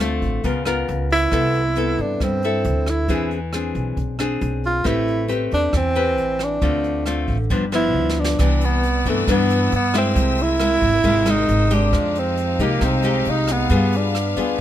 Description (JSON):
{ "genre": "bossa nova", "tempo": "136 BPM", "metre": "4/4", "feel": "straight", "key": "A minor", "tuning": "A4 = 440 Hz", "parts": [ { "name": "mellow tenor saxophone", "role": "melody", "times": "0.0-14.6 s", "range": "A3 to F4", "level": "-21 LUFS", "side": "right 2 dB", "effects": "none" }, { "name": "nylon-string guitar", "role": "accompaniment", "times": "0.0-14.6 s", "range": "G2 to B4", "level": "-22 LUFS", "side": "left 3 dB", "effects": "none" }, { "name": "upright bass", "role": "bass", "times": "0.0-14.6 s", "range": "G1 to G2", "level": "-23 LUFS", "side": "equal", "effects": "none" }, { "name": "jazz brush drum kit", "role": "drums", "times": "0.2-14.5 s", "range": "hi-hat, kick drum, rim click, snare drum", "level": "-27 LUFS", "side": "right 1 dB", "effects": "none" }, { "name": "bright studio string section", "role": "sustained chords", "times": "8.4-14.6 s", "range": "B3 to E6", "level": "-27 LUFS", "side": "left 4 dB", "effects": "none" } ], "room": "little or no reverb", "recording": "close, detailed microphones", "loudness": "-17 LUFS", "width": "side -11 dB against mid", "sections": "0.0-8.4 A section; 8.4-14.6 B section", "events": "drum fill 8.0-8.4", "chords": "0.4 C#6; 1.3 Cmaj13; 3.1 E7b13; 4.9 Am9; 6.6 Dm7; 7.5 G7; 8.4 Cmaj9; 10.2 C7alt; 11.9 Fm9; 13.7 G7b9" }